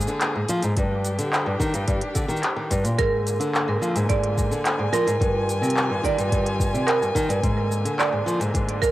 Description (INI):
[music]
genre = folktronica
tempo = 108 BPM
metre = 4/4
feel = straight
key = Bb mixolydian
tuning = A4 = 440 Hz
[part]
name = warm string quartet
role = sustained chords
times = 0.0-8.9 s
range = D3 to Ab5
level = -31 LUFS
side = left 1 dB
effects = cassette tape
[part]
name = nylon-string guitar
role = arpeggios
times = 0.0-8.9 s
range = G2 to F3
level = -24 LUFS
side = equal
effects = cassette tape, tape echo
[part]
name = organic electronic drum kit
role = drums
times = 0.0-8.9 s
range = cabasa, handclaps, hi-hat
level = -27 LUFS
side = equal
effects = overdrive
[part]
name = electronic kick drum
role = drums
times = 0.8-8.9 s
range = none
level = -26 LUFS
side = equal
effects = overdrive
[part]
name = marimba with hard mallets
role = second line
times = 3.0-8.9 s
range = Bb4 to D5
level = -25 LUFS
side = right 4 dB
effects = cassette tape, tape echo
[sound]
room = moderate spring reverb, RT60 2.5 s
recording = home recording on cassette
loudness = -20 LUFS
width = side -15 dB against mid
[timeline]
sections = 0.0-8.9 A section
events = none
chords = 0.0 Bb7; 0.8 Ebmaj7; 3.0 Bb7; 5.2 Fm9; 7.4 Bb7